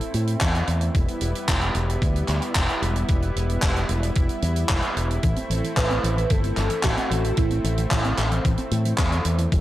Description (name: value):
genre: italo disco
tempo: 112 BPM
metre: 4/4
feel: straight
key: unclear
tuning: A4 = 442 Hz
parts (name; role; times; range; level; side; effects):
- lush unison pad; sustained chords; 0.0-9.6 s; G3 to E4; -30 LUFS; equal; chorus
- tight funk drum kit; drums; 0.0-9.6 s; handclaps, hi-hat; -27 LUFS; equal; none
- fingered electric bass with an envelope filter; bass; 0.1-9.6 s; E1 to A2; -24 LUFS; equal; none
- electronic kick drum; drums; 0.4-9.6 s; none; -23 LUFS; equal; overdrive
- warbly dusty pluck; arpeggios; 5.2-9.6 s; E3 to C4; -31 LUFS; left 2 dB; chorus, analog delay
- wide unison lead; melody; 5.8-8.1 s; E4 to B4; -28 LUFS; right 2 dB; wide subtle chorus, analog delay
room: small room ambience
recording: dry, gritty hardware recording, cassette tape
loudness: -20 LUFS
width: side -14 dB against mid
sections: 0.0-9.6 A section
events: none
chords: 0.0 Am; 0.9 Em; 5.2 Am